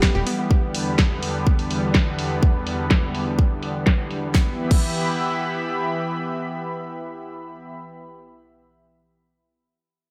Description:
progressive house; 125 BPM; 4/4; straight; E minor; A4 = 441 Hz
lush unison pad; sustained chords; 0.0-7.7 s; E2 to B5; -28 LUFS; equal; chorus, sidechain pumping
analog pluck; arpeggios; 0.0-0.5 s; B3 to G4; -33 LUFS; equal; chorus, sidechain pumping, delay
electronic kick drum; drums; 0.0-4.9 s; -20 LUFS; equal
pop drum kit; drums; 0.0-4.8 s; crash cymbal, hi-hat, snare drum; -28 LUFS; equal; sidechain pumping on cymbals, low-pass filter on cymbals, low-pass filter on snare, sidechain pumping on hats, low-pass filter on hats, low-pass filter on room
moderate lush hall reverb, RT60 1.7 s; dreamy mix soaked in reverb; -22 LUFS; mono
0.0-4.3 A section; 4.3-8.2 B section
0.0 Em; 0.5 G/E; 4.3 Em

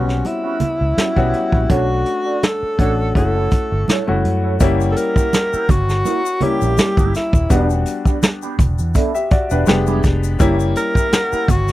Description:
lush 1970s-style soul; 83 BPM; 4/4; swing 54% on 16ths; A4 = 440 Hz
breathy tenor saxophone; melody; 0.0-11.7 s; C#4 to A#4; -20 LUFS; equal
clear grand piano; accompaniment; 0.0-11.7 s; G3 to E5; -22 LUFS; left 3 dB
mellow electric guitar; riff; 0.0-11.7 s; G3 to D5; -25 LUFS; right 6 dB; wah
vintage muted fingered electric bass; bass; 0.0-11.7 s; D#1 to F#2; -19 LUFS; equal
vintage brush drum kit; drums; 0.1-11.7 s; hi-hat, kick drum, snare drum; -16 LUFS; equal
congas; percussion; 0.2-11.7 s; -25 LUFS; right 4 dB
egg shaker; percussion; 4.6-11.7 s; -36 LUFS; left 23 dB
vibraphone with soft mallets; texture; 4.6-11.7 s; E5 to F#5; -31 LUFS; left 4 dB
little or no reverb; dry, close 1970s-style studio recording; -14 LUFS; side -16 dB against mid
0.0-4.6 A section; 4.6-11.7 B section
0.0 A13 (rootless); 1.7 Bm9; 3.2 F#m7; 4.6 F#7b9; 7.5 Em7; 9.7 Fdim7; 10.4 F#7b9

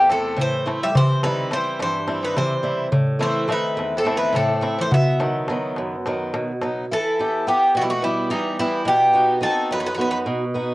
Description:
greek folk, Greek bouzouki band; 212 BPM (eighths); 7/8; straight; E harmonic minor; A4 = 440 Hz
Greek bouzouki; melody; 0.0-10.2 s; D#4 to E5; -21 LUFS; equal; cassette tape, plate reverb
Greek bouzouki; second line; 0.0-10.2 s; C3 to E4; -29 LUFS; equal; cassette tape, plate reverb
picked swing-style acoustic guitar; accompaniment; 0.0-10.7 s; E2 to E5; -24 LUFS; equal; cassette tape, plate reverb
darbuka; percussion; 0.1-6.8 s; -22 LUFS; equal
moderate booth ambience, RT60 0.2 s; home recording on cassette; -18 LUFS; side -19 dB against mid
0.0-6.9 A section; 6.9-10.7 B section
0.0 Am; 0.9 C; 2.9 Am; 4.9 B; 6.9 Em; 8.9 B

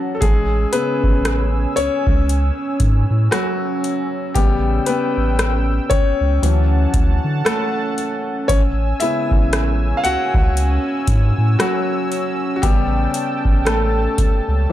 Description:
contemporary R&B; 58 BPM; 4/4; swing 58% on 16ths; A major; A4 = 440 Hz
clear grand piano; accompaniment; 0.0-14.7 s; C#3 to F#5; -21 LUFS; left 2 dB
warm analog pad; sustained chords; 0.0-14.7 s; C#4 to E6; -25 LUFS; right 2 dB; chorus
warm sub bass; bass; 0.2-14.7 s; A1 to D3; -18 LUFS; equal
booming analog drum machine; drums; 0.2-14.5 s; hi-hat, kick drum, rim click; -18 LUFS; equal
little or no reverb; dark, warm production; -15 LUFS; side -13 dB against mid
0.0-14.7 A section
grand piano solo 0.0-14.7
0.2 Amaj7; 4.4 A7; 6.4 Dmaj7; 8.5 Amaj7; 12.6 A7

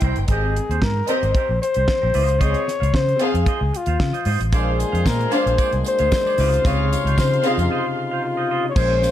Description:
disco; 113 BPM; 4/4; straight; A4 = 440 Hz
dark studio string section; second line; 0.0-9.1 s; C4 to G5; -26 LUFS; left 1 dB
clean electric guitar; accompaniment; 0.0-9.1 s; C4 to F5; -28 LUFS; right 5 dB
fingered electric bass; bass; 0.0-9.1 s; G1 to Db3; -21 LUFS; equal
damped 70s drum kit; drums; 0.0-9.1 s; crash cymbal, hi-hat, kick drum, snare drum; -22 LUFS; equal
warm flugelhorn; melody; 0.3-9.1 s; F4 to Db5; -22 LUFS; left 2 dB
percussive tonewheel organ; sustained chords; 4.5-9.1 s; C3 to F4; -28 LUFS; left 1 dB; overdrive, chorus vibrato, slow rotary speaker
warm horn section; stabs; 4.5-8.5 s; C4 to C6; -29 LUFS; left 1 dB
tambourine; percussion; 4.5-9.1 s; -38 LUFS; left 5 dB
light reverb; dark, warm production; -17 LUFS; side -11 dB against mid
0.3-8.8 A section
break 7.7-8.8
0.3 Abmaj9; 2.1 Dbmaj9; 4.5 Bb9; 6.4 Dbmaj9

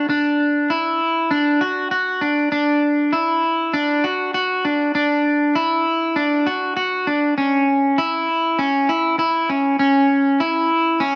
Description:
dream pop; 99 BPM; 4/4; straight; A4 = 440 Hz
electric guitar at the edge of break-up; solo; 0.0-11.2 s; C#4 to F#4; -19 LUFS; equal; subtle chorus, tape echo
moderate echo chamber reverb, RT60 1.3 s, digital ambience; echo-heavy mix; -19 LUFS; mono
0.0-11.2 A section

